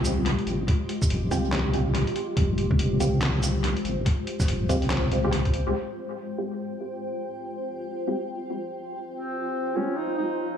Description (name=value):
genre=deep dubstep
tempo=142 BPM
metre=4/4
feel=swing 60% on 16ths, half-time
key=F minor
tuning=A4 = 440 Hz
part: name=granular cloud pad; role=sustained chords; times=0.0-10.6 s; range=Ab3 to G5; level=-30 LUFS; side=left 1 dB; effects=built-in reverb, vintage 12-bit sampler grit
part: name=deep soft wobble bass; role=bass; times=0.0-5.7 s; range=F1 to C2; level=-25 LUFS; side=equal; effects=chorus, tube saturation
part: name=trip hop sampler-style drum kit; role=drums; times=0.0-5.6 s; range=handclaps, hi-hat, shaker, snare drum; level=-30 LUFS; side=equal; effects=low-pass filter on hats, studio reverb, low-pass filter on cymbals, low-pass filter on snare, low-pass filter on perc, analog delay
part: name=electronic kick drum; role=drums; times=0.7-5.5 s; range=none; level=-24 LUFS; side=equal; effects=studio reverb
part: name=filtered dub chord stab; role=stabs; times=1.3-9.9 s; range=Ab3 to G4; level=-32 LUFS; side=equal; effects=phaser, analog delay
part: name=warm duduk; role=melody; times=9.1-10.6 s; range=C4 to Eb4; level=-29 LUFS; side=equal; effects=dub echo
room=moderate plate reverb, RT60 1.7 s, digital ambience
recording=echo-heavy mix, small room ambience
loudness=-24 LUFS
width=side -8 dB against mid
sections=0.0-5.8 A section; 5.8-10.6 B section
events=filter sweep on synth stab 5.8-10.6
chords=0.0 Fmadd9; 5.8 Fsus2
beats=0.26 | 0.68 1.10 1.52 1.95 | 2.37 2.79 3.21 3.64 | 4.06 4.48 4.91 5.33 | 5.75 6.17 6.59 7.02 | 7.44 7.86 8.29 8.71 | 9.13 9.55 9.97 10.40